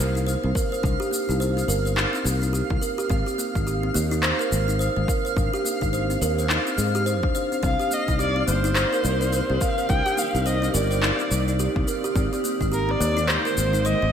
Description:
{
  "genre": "organic downtempo",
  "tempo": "106 BPM",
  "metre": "4/4",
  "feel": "swing 60% on 16ths",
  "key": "C minor",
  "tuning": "A4 = 440 Hz",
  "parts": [
    { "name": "kalimba", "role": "arpeggios", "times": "0.0-14.1 s", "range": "Bb3 to C5", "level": "-26 LUFS", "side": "right 1 dB", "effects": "digital delay" },
    { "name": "sustaining fretless electric bass", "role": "bass", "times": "0.0-14.1 s", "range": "G1 to Ab2", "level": "-24 LUFS", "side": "equal", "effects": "lush chorus, sidechain pumping" },
    { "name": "electronic shaker and handclaps", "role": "drums", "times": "0.0-14.0 s", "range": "none", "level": "-29 LUFS", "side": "left 1 dB", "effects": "overdrive, gated reverb" },
    { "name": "twinkling granular texture", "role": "texture", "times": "0.0-14.1 s", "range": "F5", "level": "-33 LUFS", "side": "equal", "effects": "built-in reverb" },
    { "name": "electronic kick drum", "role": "drums", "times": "0.6-12.7 s", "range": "none", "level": "-26 LUFS", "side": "equal", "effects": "overdrive" },
    { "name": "dark kamancheh", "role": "melody", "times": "7.6-14.1 s", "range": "Bb4 to G5", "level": "-26 LUFS", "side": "left 1 dB", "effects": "digital delay" },
    { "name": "granular cloud pad", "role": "sustained chords", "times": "8.9-14.1 s", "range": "Eb3 to D5", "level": "-33 LUFS", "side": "left 1 dB", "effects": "built-in reverb, wide subtle chorus, sidechain pumping" }
  ],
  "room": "moderate lush hall reverb, RT60 1.8 s",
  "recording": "bright 1980s-style digital production",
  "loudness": "-20 LUFS",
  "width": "side -8 dB against mid",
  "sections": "0.0-14.1 A section",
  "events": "none",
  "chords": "0.0 Cm7; 3.1 Abadd9; 7.6 Cm7; 12.2 Abadd9",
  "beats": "0.27 | 0.84 1.40 1.97 2.54 | 3.10 3.67 4.23 4.80 | 5.37 5.93 6.50 7.06 | 7.63 8.20 8.76 9.33 | 9.89 10.46 11.03 11.59 | 12.16 12.72 13.29 13.86"
}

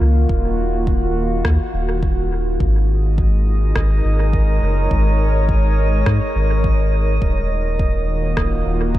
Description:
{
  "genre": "ambient dub",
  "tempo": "104 BPM",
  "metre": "4/4",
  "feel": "straight",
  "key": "Eb minor",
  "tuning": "A4 = 440 Hz",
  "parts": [
    { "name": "warbly tape-like pad", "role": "sustained chords", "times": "0.0-9.0 s", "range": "Eb3 to Db5", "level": "-22 LUFS", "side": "equal", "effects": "chorus, built-in reverb" },
    { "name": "round analog bass", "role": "bass", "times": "0.0-9.0 s", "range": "Eb1 to Ab2", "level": "-17 LUFS", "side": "equal", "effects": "none" },
    { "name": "electronic kick drum", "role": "drums", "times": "0.3-9.0 s", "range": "none", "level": "-21 LUFS", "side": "equal", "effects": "none" },
    { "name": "electronic rim click", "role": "drums", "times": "1.4-8.5 s", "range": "none", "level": "-30 LUFS", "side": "equal", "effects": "dub echo" },
    { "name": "drifting glass-harmonics texture", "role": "texture", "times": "3.2-9.0 s", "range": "Eb5", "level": "-30 LUFS", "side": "right 5 dB", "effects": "chorus, built-in reverb" }
  ],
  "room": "light reverb",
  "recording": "none",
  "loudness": "-15 LUFS",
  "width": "side -14 dB against mid",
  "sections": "0.0-9.0 A section",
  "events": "none",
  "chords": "0.0 Ebmadd9; 2.6 Ab7sus4; 7.2 Ebm9",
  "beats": "| 0.29 0.87 1.45 2.03 | 2.60 3.18 3.76 4.33 | 4.91 5.49 6.06 6.64 | 7.22 7.79 8.37 8.95"
}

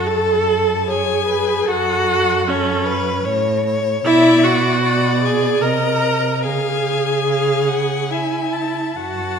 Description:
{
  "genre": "classical, slow romantic movement for string quartet",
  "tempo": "74 BPM",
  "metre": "3/4",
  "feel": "uneven beats, rubato",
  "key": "F# minor",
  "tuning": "A4 = 440 Hz",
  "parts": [
    { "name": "warm violin", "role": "melody", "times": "0.0-9.4 s", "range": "C#5 to Bb5", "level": "-24 LUFS", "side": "left 8 dB", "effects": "none" },
    { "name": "warm violin", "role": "second line", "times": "0.0-9.4 s", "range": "A4 to A5", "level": "-22 LUFS", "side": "left 4 dB", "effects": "none" },
    { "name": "warm viola", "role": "accompaniment", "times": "0.0-9.4 s", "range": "C#4 to Bb4", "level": "-18 LUFS", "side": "right 1 dB", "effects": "none" },
    { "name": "dark cello", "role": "bass", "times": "0.0-9.4 s", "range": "F#2 to C#3", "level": "-23 LUFS", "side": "right 5 dB", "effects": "none" }
  ],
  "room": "wet scoring stage reverb, RT60 1.8 s",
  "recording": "minimal, uncompressed stereo recording",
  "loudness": "-15 LUFS",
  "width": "side -6 dB against mid",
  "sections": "0.0-9.4 A section",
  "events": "none",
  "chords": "0.0 F#m; 4.1 Bmadd11; 5.6 Cm7; 6.5 C#",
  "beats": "0.07 0.87 | 1.67 2.48 3.26 | 4.05 4.84 5.63 | 6.46 7.29 8.11 | 8.96"
}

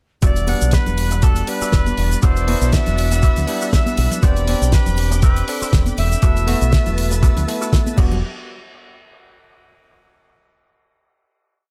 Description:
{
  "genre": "nu-disco, nu disco",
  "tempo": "120 BPM",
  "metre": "4/4",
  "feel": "swing 55% on 16ths",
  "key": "E minor",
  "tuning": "A4 = 436 Hz",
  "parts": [
    { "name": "bright reedy silver concert flute", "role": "melody", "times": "0.2-7.7 s", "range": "A4 to E5", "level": "-28 LUFS", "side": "equal", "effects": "dub echo" },
    { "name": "bell-like tine electric piano", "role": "accompaniment", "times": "0.2-8.2 s", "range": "G3 to F#5", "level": "-28 LUFS", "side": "equal", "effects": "sidechain pumping" },
    { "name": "string machine, full ensemble", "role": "sustained chords", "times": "0.2-8.2 s", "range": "G4 to F#6", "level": "-36 LUFS", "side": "equal", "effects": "ensemble chorus, sidechain pumping" },
    { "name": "electric guitar with an envelope filter", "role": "riff", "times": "0.2-8.2 s", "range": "F#4 to E5", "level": "-33 LUFS", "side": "equal", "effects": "subtle chorus" },
    { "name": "fingered electric bass with an envelope filter", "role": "bass", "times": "0.2-8.2 s", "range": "E1 to D2", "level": "-21 LUFS", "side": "equal", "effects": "sidechain pumping" },
    { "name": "damped 70s drum kit", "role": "drums", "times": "0.2-8.1 s", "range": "crash cymbal, hi-hat, shaker, snare drum", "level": "-28 LUFS", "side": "equal", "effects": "none" },
    { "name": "electronic kick drum", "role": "drums", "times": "0.2-8.1 s", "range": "none", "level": "-18 LUFS", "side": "equal", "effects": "none" },
    { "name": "cabasa and congas", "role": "percussion", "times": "0.2-8.2 s", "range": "none", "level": "-32 LUFS", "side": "equal", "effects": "none" }
  ],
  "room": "studio ambience",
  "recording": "none",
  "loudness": "-17 LUFS",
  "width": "mono",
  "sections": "0.2-8.2 drop; 8.2-10.2 final hit",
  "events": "drop 0.2-8.2",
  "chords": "0.2 Em9; 4.2 Am11/E; 6.2 B7sus4/E; 8.0 Em9; 8.2 N.C.",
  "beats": "| 0.23 0.73 1.23 1.73 | 2.23 2.73 3.23 3.73 | 4.23 4.73 5.23 5.73 | 6.23 6.73 7.23 7.73"
}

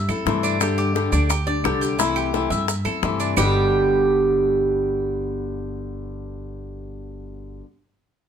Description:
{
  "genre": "latin, Cuban son and guajira",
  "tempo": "174 BPM",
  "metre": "4/4",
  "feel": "straight",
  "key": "G major",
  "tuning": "A4 = 440 Hz",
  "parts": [
    { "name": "Cuban tres", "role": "arpeggios", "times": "0.0-7.6 s", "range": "G3 to E5", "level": "-23 LUFS", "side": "right 3 dB", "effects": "none" },
    { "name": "upright bass", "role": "bass", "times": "0.0-7.6 s", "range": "G1 to G2", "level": "-26 LUFS", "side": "right 1 dB", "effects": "none" },
    { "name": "flamenco guitar", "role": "accompaniment", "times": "0.1-7.7 s", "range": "G2 to G4", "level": "-25 LUFS", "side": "left 6 dB", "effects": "none" },
    { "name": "bongos", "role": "percussion", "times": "0.1-3.5 s", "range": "none", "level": "-27 LUFS", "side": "left 10 dB", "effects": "none" },
    { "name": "claves", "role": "percussion", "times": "0.1-3.5 s", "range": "none", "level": "-30 LUFS", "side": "right 9 dB", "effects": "none" },
    { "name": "maracas", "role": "percussion", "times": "0.1-3.5 s", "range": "none", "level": "-33 LUFS", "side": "right 6 dB", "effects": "none" }
  ],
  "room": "moderate studio reverb, RT60 0.7 s",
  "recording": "minimal, uncompressed stereo recording",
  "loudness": "-19 LUFS",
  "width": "side -8 dB against mid",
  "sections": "0.0-3.4 A section; 3.4-6.1 B section",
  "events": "none",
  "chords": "0.0 C6; 0.6 G5; 2.0 C6; 3.4 G",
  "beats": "0.27 | 0.61 0.95 1.30 1.65 | 1.99 2.34 2.68 3.03 | 3.37 3.72 4.07 4.41 | 4.76 5.10 5.45 5.79"
}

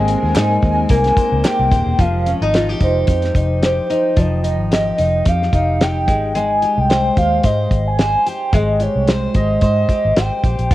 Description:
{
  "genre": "indie pop, bedroom pop",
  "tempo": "110 BPM",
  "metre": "4/4",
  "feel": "swing 55% on 16ths",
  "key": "Ab major",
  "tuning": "A4 = 440 Hz",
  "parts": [
    { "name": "warbly nostalgic lead", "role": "melody", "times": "0.0-10.7 s", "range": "C5 to Ab5", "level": "-18 LUFS", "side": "right 1 dB", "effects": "lush chorus, cassette tape, analog delay" },
    { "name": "picked steel-string acoustic guitar", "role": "accompaniment", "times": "0.0-10.7 s", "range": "F3 to C5", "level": "-20 LUFS", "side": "left 2 dB", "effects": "wide subtle chorus, warbly pitch drift, cassette tape" },
    { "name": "granular cloud pad", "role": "sustained chords", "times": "0.0-2.0 s", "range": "Ab3 to Bb4", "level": "-30 LUFS", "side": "right 2 dB", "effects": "built-in reverb, cassette tape" },
    { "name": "vintage muted fingered electric bass", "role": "bass", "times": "0.0-10.7 s", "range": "Eb1 to Ab2", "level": "-19 LUFS", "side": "equal", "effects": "none" },
    { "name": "damped 70s drum kit", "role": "drums", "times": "0.1-10.7 s", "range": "hi-hat, kick drum, snare drum", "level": "-18 LUFS", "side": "equal", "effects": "none" },
    { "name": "group handclap", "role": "percussion", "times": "0.4-1.6 s", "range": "none", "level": "-30 LUFS", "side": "right 3 dB", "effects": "none" }
  ],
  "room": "small room ambience",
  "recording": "home recording on cassette",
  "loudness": "-14 LUFS",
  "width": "side -15 dB against mid",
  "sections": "0.0-2.0 A section; 2.0-10.7 B section",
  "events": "none",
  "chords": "0.0 Abmaj9; 2.0 Fm9; 6.1 Abmaj7",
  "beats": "0.35 0.90 1.44 | 1.99 2.53 3.08 3.62 | 4.17 4.72 5.26 5.81 | 6.35 6.90 7.44 7.99 | 8.53 9.08 9.62 10.17 | 10.71"
}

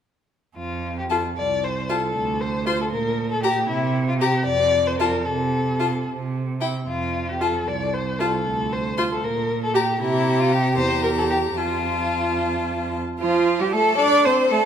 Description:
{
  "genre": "quick classical-period movement for string quartet",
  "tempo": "76 BPM (dotted quarters)",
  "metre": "6/8",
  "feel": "rubato",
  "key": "F major",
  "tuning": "A4 = 436 Hz",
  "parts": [
    { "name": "rich violin", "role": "second line", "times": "0.6-14.6 s", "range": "E4 to D5", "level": "-24 LUFS", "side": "left 4 dB", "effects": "none" },
    { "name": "clear cello", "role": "bass", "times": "0.6-14.7 s", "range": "C2 to D5", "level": "-24 LUFS", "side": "right 4 dB", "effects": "none" },
    { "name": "clear violin", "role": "melody", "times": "1.1-14.7 s", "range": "F4 to C6", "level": "-27 LUFS", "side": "left 9 dB", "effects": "none" },
    { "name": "rich viola", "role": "accompaniment", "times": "1.1-14.6 s", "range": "F3 to G4", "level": "-26 LUFS", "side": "right 2 dB", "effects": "none" }
  ],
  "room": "wet recital hall reverb, RT60 1.8 s",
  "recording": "none",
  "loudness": "-20 LUFS",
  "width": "side -8 dB against mid",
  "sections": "0.6-13.2 A section; 13.2-14.7 B section",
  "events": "none",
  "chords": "0.6 F; 2.2 Dm7; 2.9 Gm/Bb; 3.7 C; 4.5 N.C.; 5.3 F/C; 6.1 C; 6.9 F; 8.5 Dm7; 9.2 Gm/Bb; 10.0 C7; 11.6 F",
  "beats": "| 0.57 1.37 | 2.15 2.92 | 3.69 4.46 | 5.26 6.07 | 6.88 7.67 | 8.46 9.23 | 9.99 10.76 | 11.57 12.38 | 13.20 13.99"
}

